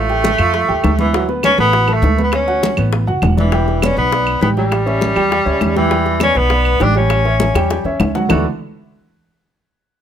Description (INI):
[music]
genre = Afro-Cuban jazz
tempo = 201 BPM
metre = 4/4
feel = straight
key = D major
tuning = A4 = 440 Hz
[part]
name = clear tenor saxophone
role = melody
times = 0.0-8.4 s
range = E3 to F#4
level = -16 LUFS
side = equal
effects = none
[part]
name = warm baby grand piano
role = accompaniment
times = 0.0-8.4 s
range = D3 to G5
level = -20 LUFS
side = right 2 dB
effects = none
[part]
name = upright bass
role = bass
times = 0.0-8.4 s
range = E1 to F2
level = -18 LUFS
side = equal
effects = none
[part]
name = bongos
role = percussion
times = 0.1-8.4 s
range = none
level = -24 LUFS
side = left 5 dB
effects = none
[part]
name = congas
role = percussion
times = 0.1-8.4 s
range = none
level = -22 LUFS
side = right 1 dB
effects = none
[part]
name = claves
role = percussion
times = 0.4-8.4 s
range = none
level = -25 LUFS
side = right 5 dB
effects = none
[sound]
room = light reverb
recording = close, detailed microphones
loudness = -12 LUFS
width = side -9 dB against mid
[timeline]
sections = 0.0-3.5 A section; 3.5-8.3 B section; 8.3-9.5 C section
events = drum fill 7.6-8.3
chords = 0.0 Dmadd11; 1.1 D69; 3.5 Em7; 4.7 A7; 5.9 Em7; 7.1 A6; 8.3 D69